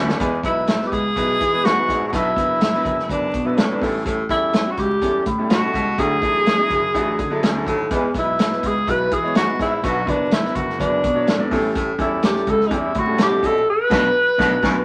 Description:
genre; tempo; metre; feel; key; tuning
uptempo 1960s-style soul; 125 BPM; 4/4; straight; unclear; A4 = 439 Hz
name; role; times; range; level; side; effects
bright upright piano; accompaniment; 0.0-14.8 s; F#3 to D5; -28 LUFS; equal; none
clear baritone saxophone; riff; 0.0-14.8 s; D2 to B2; -28 LUFS; equal; none
warm grand piano; bass; 0.0-14.8 s; F#1 to E3; -28 LUFS; equal; none
warm soul drum kit; drums; 0.1-14.8 s; crash cymbal, hi-hat, kick drum, snare drum; -25 LUFS; equal; none
breathy tenor saxophone; melody; 0.4-14.8 s; C#4 to B4; -22 LUFS; equal; none
room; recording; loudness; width
wet small room reverb, RT60 0.5 s; vinyl crackle; -19 LUFS; mono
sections
0.2-14.8 A section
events
drum fill 0.0; band accent 13.7-14.8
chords
0.2 E; 2.1 Bm; 3.8 A7; 6.0 Dadd9; 7.9 E; 9.8 Bm; 11.5 A7; 13.7 Bm

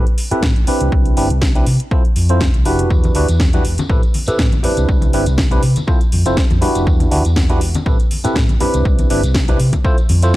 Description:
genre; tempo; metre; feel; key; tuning
filtered disco house; 121 BPM; 4/4; swing 54% on 16ths; unclear; A4 = 440 Hz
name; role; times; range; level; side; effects
bright tine electric piano; accompaniment; 0.0-10.4 s; C4 to C5; -19 LUFS; right 1 dB; phaser, sidechain pumping, low-pass filter
house drum kit; drums; 0.1-10.4 s; hi-hat, snare drum; -23 LUFS; equal; overdrive, sidechain pumping on hats
overdriven fingered electric bass; bass; 0.3-10.4 s; E1 to C3; -16 LUFS; equal; sidechain pumping, low-pass filter
electronic kick drum; drums; 0.4-10.4 s; none; -16 LUFS; equal; none
tambourine and congas; percussion; 2.9-10.4 s; none; -26 LUFS; left 2 dB; sidechain pumping on perc, low-pass filter on perc
room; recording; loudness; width
digital ambience; dry, gritty hardware recording; -12 LUFS; side -16 dB against mid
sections
0.0-10.4 A section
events
filter sweep 0.0-10.4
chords
0.0 Am9; 0.7 Cmaj9; 1.9 Fmaj7; 2.9 Em9; 3.9 Am9; 4.6 Cmaj9; 5.9 Fmaj7; 6.9 Em9; 7.9 Am9; 8.6 Cmaj9; 9.8 Fmaj7

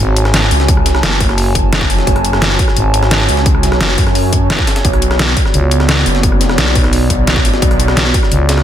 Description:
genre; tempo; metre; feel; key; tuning
dark technical drum and bass; 173 BPM; 4/4; straight; F# minor; A4 = 441 Hz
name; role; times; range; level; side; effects
dark analog pad; sustained chords; 0.0-8.6 s; B3 to A5; -18 LUFS; right 1 dB; chorus, sidechain pumping
growling FM bass; bass; 0.0-3.3, 5.5-8.6 s; F#1 to C#2; -13 LUFS; equal; none
breakbeat sampler-style drum kit; drums; 0.2-8.6 s; hi-hat, snare drum; -24 LUFS; equal; high-pass filter on hats, high-pass filter on snare
dubstep drum kit; drums; 0.2-8.6 s; hi-hat, rim click, snare drum; -16 LUFS; left 1 dB; none
wide detuned saw bass; bass; 0.5-8.1 s; F#1 to F#2; -15 LUFS; equal; chorus, overdrive, sidechain pumping
electronic kick drum; drums; 0.7-8.2 s; none; -14 LUFS; equal; none
room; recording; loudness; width
digital ambience; dense, heavily limited modern master; -10 LUFS; side -10 dB against mid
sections
0.0-8.6 A section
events
none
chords
0.0 F#m; 4.8 Bm

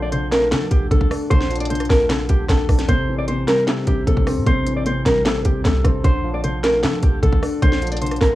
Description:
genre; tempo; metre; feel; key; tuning
hip hop, trap; 152 BPM; 4/4; half-time; A phrygian; A4 = 443 Hz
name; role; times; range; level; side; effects
nylon-string guitar; melody; 0.0-8.3 s; G4 to D5; -22 LUFS; equal; low-pass filter, tape echo
dark baby grand piano; accompaniment; 0.0-8.3 s; C3 to D4; -23 LUFS; left 2 dB; low-pass filter
clean 808-style bass; bass; 0.0-8.3 s; A1 to F3; -22 LUFS; equal; none
trap drum kit; drums; 0.1-8.3 s; handclaps, hi-hat, kick drum, rim click, snare drum; -20 LUFS; equal; none
room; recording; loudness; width
little or no reverb; worn, warbling old tape, cassette tape, warbly pitch drift, small room ambience; -16 LUFS; side -16 dB against mid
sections
0.0-2.9 A section; 2.9-8.3 A section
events
none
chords
0.0 Bbmaj7; 2.9 Am7; 6.0 Bbmaj7

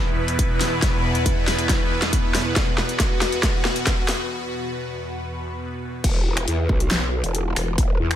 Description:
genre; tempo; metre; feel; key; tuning
heavy wobble dubstep; 138 BPM; 4/4; half-time; unclear; A4 = 440 Hz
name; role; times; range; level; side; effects
supersaw pad; sustained chords; 0.0-6.0 s; E2 to B4; -24 LUFS; equal; phaser, sidechain pumping
dubstep drum kit; drums; 0.3-8.2 s; crash cymbal, finger snaps, handclaps, hi-hat, snare drum; -24 LUFS; left 1 dB; high-pass filter on snare, studio reverb, high-pass filter on toms, high-pass filter on hats, high-pass filter on cymbals
electronic kick drum; drums; 0.4-7.9 s; none; -22 LUFS; equal; studio reverb
growl bass; bass; 6.0-8.2 s; E1 to E2; -23 LUFS; equal; chorus, overdrive
room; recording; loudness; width
light reverb, digital ambience; none; -20 LUFS; side -11 dB against mid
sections
0.0-6.0 A section; 6.0-8.2 B section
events
build-up 0.0-6.0; drum fill 0.0-4.3; break 4.3-6.0; drop 6.0-8.2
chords
0.0 E5

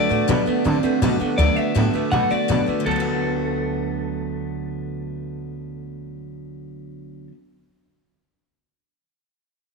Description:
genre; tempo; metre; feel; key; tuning
rockabilly; 163 BPM; 4/4; straight; D major; A4 = 440 Hz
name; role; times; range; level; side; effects
electric guitar through a small old amp; melody; 0.0-7.3 s; A4 to F#5; -25 LUFS; left 2 dB; tape echo
picked steel-string acoustic guitar; accompaniment; 0.0-7.4 s; D3 to F#4; -26 LUFS; left 12 dB; none
electric guitar through a small old amp; riff; 0.0-7.3 s; D3 to A4; -25 LUFS; right 12 dB; none
upright bass; bass; 0.0-7.3 s; D2 to D3; -25 LUFS; equal; none
room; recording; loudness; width
moderate echo chamber reverb, RT60 1.9 s; 1960s-style stereo with parts hard left and right; -19 LUFS; side -4 dB against mid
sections
0.0-1.4 A section; 1.4-2.9 B section; 2.9-5.8 C section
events
none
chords
0.0 D6

